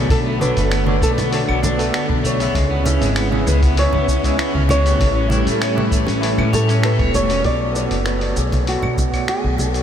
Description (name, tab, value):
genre	sunset chillout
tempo	98 BPM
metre	4/4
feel	straight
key	B minor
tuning	A4 = 441 Hz
part	nylon-string guitar	melody	0.0-9.8 s	F#4 to D5	-23 LUFS	equal	diffuse ambient delay
part	overdriven tine electric piano	accompaniment	0.0-9.8 s	C#3 to E5	-24 LUFS	moving between left 3 dB and right 5 dB	medium tremolo, auto-pan, diffuse ambient delay
part	soft string machine	sustained chords	0.0-7.4 s	C#3 to E4	-24 LUFS	equal	ensemble chorus, vintage 12-bit sampler grit
part	electric guitar at the edge of break-up	arpeggios	0.0-7.4 s	G#3 to C#5	-26 LUFS	left 1 dB	wide subtle chorus, diffuse ambient delay
part	upright bass	bass	0.0-9.8 s	E1 to A2	-20 LUFS	equal	none
part	dusty soul sampler-style drum kit	drums	0.1-9.8 s	claves, finger snaps, hi-hat, shaker	-27 LUFS	equal	none
part	electronic kick drum	drums	0.1-9.3 s	none	-20 LUFS	equal	none
part	congas	percussion	0.1-9.7 s	none	-29 LUFS	right 2 dB	none
room	moderate huge ambient reverb, RT60 7.2 s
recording	dreamy mix soaked in reverb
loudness	-15 LUFS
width	side -9 dB against mid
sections	0.0-7.4 A section; 7.4-9.8 B section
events	none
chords	0.0 Bm7; 2.5 C#m7; 5.0 A7; 7.4 Bm7